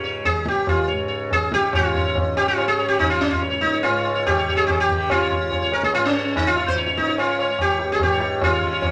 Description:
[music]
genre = indian classical, Hindustani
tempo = 143 BPM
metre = 4/4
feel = straight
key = Db raga yaman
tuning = A4 = 440 Hz
[part]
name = sitar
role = melody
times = 0.0-8.9 s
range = Db4 to Db5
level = -22 LUFS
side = equal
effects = none
[part]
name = tanpura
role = drone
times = 0.0-8.9 s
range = Db2 to Db3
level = -33 LUFS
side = equal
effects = none
[part]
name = tabla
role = percussion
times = 0.2-8.9 s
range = none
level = -27 LUFS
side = equal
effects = none
[sound]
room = wet large studio reverb, RT60 0.9 s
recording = none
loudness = -20 LUFS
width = mono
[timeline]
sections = 0.0-1.7 A section; 1.7-8.9 B section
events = speeding up 0.0-8.9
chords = none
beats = | 0.04 0.46 0.89 1.31 | 1.74 2.16 2.58 3.00 | 3.42 3.85 4.26 4.68 | 5.10 5.52 5.94 6.35 | 6.77 7.18 7.60 8.01 | 8.42 8.83

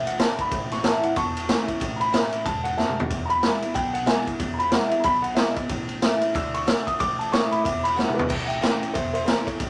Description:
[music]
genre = rockabilly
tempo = 185 BPM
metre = 4/4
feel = swing 60% on 8ths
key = A major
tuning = A4 = 440 Hz
[part]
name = dark upright piano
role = melody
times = 0.0-9.6 s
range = A4 to E6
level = -28 LUFS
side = equal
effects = none
[part]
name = picked steel-string acoustic guitar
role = accompaniment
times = 0.0-9.7 s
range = E2 to F#4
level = -31 LUFS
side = equal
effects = none
[part]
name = upright bass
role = bass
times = 0.0-9.7 s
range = E1 to D2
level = -39 LUFS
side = equal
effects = none
[part]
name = raw garage drum kit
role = drums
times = 0.1-9.7 s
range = crash cymbal, kick drum, ride cymbal, snare drum, toms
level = -27 LUFS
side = equal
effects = none
[sound]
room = moderate studio reverb, RT60 0.7 s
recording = none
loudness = -24 LUFS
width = mono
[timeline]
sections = 0.0-8.3 A section; 8.3-9.7 B section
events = upright piano solo 0.0-8.3; drum fill 2.8-3.1, 8.0-8.3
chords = 0.0 D; 0.5 A; 3.1 E; 5.7 A; 6.3 D; 7.0 A; 7.6 E; 8.3 A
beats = 0.19 | 0.51 0.83 1.16 1.48 | 1.81 2.13 2.45 2.78 | 3.10 3.43 3.75 4.08 | 4.40 4.72 5.05 5.37 | 5.70 6.02 6.35 6.67 | 7.00 7.32 7.65 7.97 | 8.30 8.62 8.95 9.27 | 9.60

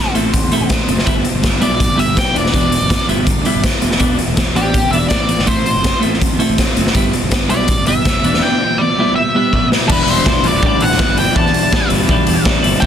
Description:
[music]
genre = indie rock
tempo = 163 BPM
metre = 4/4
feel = straight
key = E minor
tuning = A4 = 440 Hz
[part]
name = octave-fuzz lead guitar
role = melody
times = 0.0-12.9 s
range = G4 to A5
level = -19 LUFS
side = equal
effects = distortion, tape echo
[part]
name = twelve-string electric guitar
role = riff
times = 0.0-12.9 s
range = A2 to B4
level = -18 LUFS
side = right 1 dB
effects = none
[part]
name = fuzz fingered electric bass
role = bass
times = 0.0-12.9 s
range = E1 to E2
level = -21 LUFS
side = equal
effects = overdrive
[part]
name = raw garage drum kit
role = drums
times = 0.2-12.9 s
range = crash cymbal, hi-hat, kick drum, snare drum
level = -15 LUFS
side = equal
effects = none
[sound]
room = small room ambience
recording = dense, heavily limited modern master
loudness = -12 LUFS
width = side -9 dB against mid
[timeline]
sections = 0.0-9.9 A section; 9.9-12.9 B section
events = drum fill 9.5-9.9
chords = 0.0 Am; 1.1 G6; 2.4 E5; 3.1 G6; 4.0 Em7; 5.5 Am; 7.0 G6; 8.2 Em7; 9.0 G6; 9.5 B5; 9.9 Em7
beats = 0.34 0.70 | 1.07 1.44 1.81 2.17 | 2.54 2.91 3.28 3.64 | 4.01 4.38 4.75 5.11 | 5.48 5.85 6.22 6.59 | 6.95 7.32 7.69 8.06 | 8.43 8.79 9.16 9.53 | 9.90 10.26 10.63 11.00 | 11.36 11.73 12.10 12.46 | 12.83

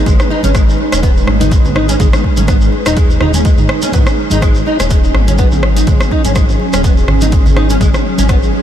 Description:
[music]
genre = afro house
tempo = 124 BPM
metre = 4/4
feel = swing 56% on 16ths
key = unclear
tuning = A4 = 439 Hz
[part]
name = ethereal airy pad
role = sustained chords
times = 0.0-8.6 s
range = F#3 to B4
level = -18 LUFS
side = right 1 dB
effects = ensemble chorus, built-in reverb, sidechain pumping
[part]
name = nylon-string guitar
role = arpeggios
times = 0.0-8.4 s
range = G#3 to D#4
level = -18 LUFS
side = left 1 dB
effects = ensemble chorus, sidechain pumping, ping-pong delay
[part]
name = smooth synth bass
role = bass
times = 0.0-8.5 s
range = D#1 to G#1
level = -15 LUFS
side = equal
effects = sidechain pumping
[part]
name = deep house drum kit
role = drums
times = 0.1-8.4 s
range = hi-hat, rim click, toms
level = -20 LUFS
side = equal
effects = overdrive, studio reverb
[part]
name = electronic kick drum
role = drums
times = 0.1-8.4 s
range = none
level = -12 LUFS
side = equal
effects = overdrive, studio reverb
[part]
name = congas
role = percussion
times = 0.1-8.6 s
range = none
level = -22 LUFS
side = right 4 dB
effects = none
[part]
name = shekere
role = percussion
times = 0.1-8.5 s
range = none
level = -26 LUFS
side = right 2 dB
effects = none
[sound]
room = light reverb, studio ambience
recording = none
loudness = -9 LUFS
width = side -10 dB against mid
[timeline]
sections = 0.0-8.6 A section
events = none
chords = 0.0 G#m; 3.9 F#5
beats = | 0.07 0.55 1.03 1.52 | 2.00 2.49 2.97 3.45 | 3.94 4.42 4.91 5.39 | 5.87 6.36 6.84 7.32 | 7.81 8.29

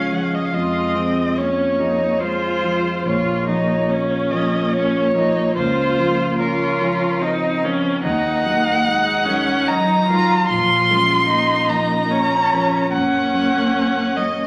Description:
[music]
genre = classical, slow romantic movement for piano quartet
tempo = 72 BPM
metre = 3/4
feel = rubato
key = Bb minor from 8.0 s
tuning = A4 = 440 Hz
[part]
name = warm violin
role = melody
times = 0.0-14.5 s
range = Bb4 to C6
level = -22 LUFS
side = equal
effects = none
[part]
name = warm cello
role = second line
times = 0.0-14.5 s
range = F3 to Db4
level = -27 LUFS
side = equal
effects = none
[part]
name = bright viola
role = accompaniment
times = 0.0-14.5 s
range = C4 to F4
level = -24 LUFS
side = equal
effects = none
[part]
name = warm concert grand piano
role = accompaniment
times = 0.0-14.5 s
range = Bb1 to Bb4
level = -26 LUFS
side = equal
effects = none
[sound]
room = wet recital hall reverb, RT60 1.2 s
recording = vinyl crackle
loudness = -18 LUFS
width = mono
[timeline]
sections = 0.0-14.5 A section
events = none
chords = 0.0 Db; 0.5 Db/F; 3.1 Bbm; 5.6 Bbm/Db; 8.0 Ebm; 10.5 Bbm; 12.9 Gb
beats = | 0.54 1.37 2.21 | 3.05 3.90 4.73 | 5.56 6.39 7.22 | 8.04 8.85 9.67 | 10.48 11.29 12.11 | 12.93 13.74

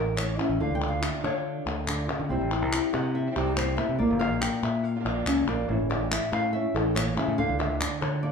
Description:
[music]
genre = flamenco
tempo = 142 BPM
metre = 4/4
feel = straight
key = unclear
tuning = A4 = 440 Hz
[part]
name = flamenco guitar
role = melody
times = 0.0-8.3 s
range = A2 to G5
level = -28 LUFS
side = left 1 dB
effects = slapback echo, plate reverb
[part]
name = modern bright fingered electric bass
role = bass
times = 0.0-8.3 s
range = G1 to D3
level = -30 LUFS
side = right 1 dB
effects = none
[part]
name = flamenco guitar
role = stabs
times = 0.2-8.3 s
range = C3 to F4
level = -32 LUFS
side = left 1 dB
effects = none
[part]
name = palmas hand claps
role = percussion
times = 0.2-8.2 s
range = none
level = -32 LUFS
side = left 2 dB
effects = none
[sound]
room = wet large studio reverb, RT60 0.8 s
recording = heard from further back in the room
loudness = -24 LUFS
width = side -6 dB against mid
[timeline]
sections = 0.0-8.3 A section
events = nylon-string guitar solo 0.0-8.3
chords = 0.0 A; 0.6 Dm; 2.3 C; 4.0 Bb; 5.7 A; 7.4 Dm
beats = 0.18 | 0.60 1.02 1.45 1.87 | 2.30 2.72 3.15 3.57 | 3.99 4.42 4.84 5.26 | 5.69 6.11 6.54 6.96 | 7.38 7.81 8.23

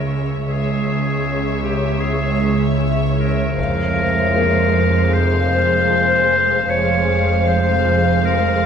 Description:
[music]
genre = cinematic, suspense film score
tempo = 77 BPM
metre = 4/4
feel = straight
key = F harmonic minor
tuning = A4 = 440 Hz
[part]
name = muted studio violin section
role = melody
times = 0.0-8.7 s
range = Fb5 to F5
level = -26 LUFS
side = left 2 dB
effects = none
[part]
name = clear clarinet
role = second line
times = 0.0-8.7 s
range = G4 to Db5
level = -20 LUFS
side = left 3 dB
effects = none
[part]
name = muted studio violin section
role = second line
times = 0.0-8.7 s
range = C5 to Db5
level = -27 LUFS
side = equal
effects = none
[part]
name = muted studio viola section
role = accompaniment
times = 0.0-8.7 s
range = Ab3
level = -25 LUFS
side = right 5 dB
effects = none
[part]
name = granular cloud pad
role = sustained chords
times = 0.0-8.7 s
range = Fb4 to C6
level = -28 LUFS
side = left 2 dB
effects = built-in reverb
[part]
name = muted studio cello section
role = bass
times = 0.0-8.7 s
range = Db2 to F2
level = -24 LUFS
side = right 2 dB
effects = none
[part]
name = muted studio double bass section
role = bass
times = 0.0-8.7 s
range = F1 to Db2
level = -26 LUFS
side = right 4 dB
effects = none
[part]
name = metallic inharmonic drone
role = drone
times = 0.0-8.7 s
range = Db2 to F2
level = -26 LUFS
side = right 2 dB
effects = chorus, built-in reverb
[part]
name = felt-muted upright piano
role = texture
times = 0.0-8.7 s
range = Bb3 to Db5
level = -30 LUFS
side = left 4 dB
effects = none
[part]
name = marimba with soft mallets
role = riff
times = 0.1-8.5 s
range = F2 to Db4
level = -23 LUFS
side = left 1 dB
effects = none
[part]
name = taiko ensemble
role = drums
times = 3.6-5.1 s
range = none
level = -33 LUFS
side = equal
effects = none
[sound]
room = moderate scoring stage reverb, RT60 1.9 s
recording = minimal, uncompressed stereo recording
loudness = -15 LUFS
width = side -7 dB against mid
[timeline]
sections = 0.0-8.7 A section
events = none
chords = 0.0 Dbm; 3.6 Fm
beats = | 0.46 1.24 2.02 2.80 | 3.58 4.36 5.14 5.92 | 6.70 7.48 8.26

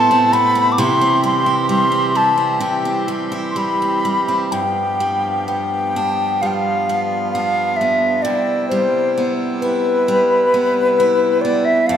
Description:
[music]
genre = celtic folk, Celtic slow air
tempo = 65 BPM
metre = 4/4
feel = uneven beats, rubato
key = unclear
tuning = A4 = 440 Hz
[part]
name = wooden flute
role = melody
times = 0.0-12.0 s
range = B4 to D6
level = -16 LUFS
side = left 1 dB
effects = none
[part]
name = picked steel-string acoustic guitar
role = accompaniment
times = 0.0-12.0 s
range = F2 to E4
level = -21 LUFS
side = right 2 dB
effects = none
[part]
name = accordion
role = sustained chords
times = 0.0-12.0 s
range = C3 to A4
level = -25 LUFS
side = equal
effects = none
[sound]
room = wet church reverb, RT60 3.4 s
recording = minimal, uncompressed stereo recording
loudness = -15 LUFS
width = side -9 dB against mid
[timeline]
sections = 0.0-4.5 A section; 4.5-12.0 B section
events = none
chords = 0.0 Amadd9; 0.8 C; 4.5 G7; 8.3 Cmaj7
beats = | 0.79 1.69 2.61 3.57 | 4.53 5.49 6.42 7.34 | 8.26 9.18 10.10 11.00 | 11.89

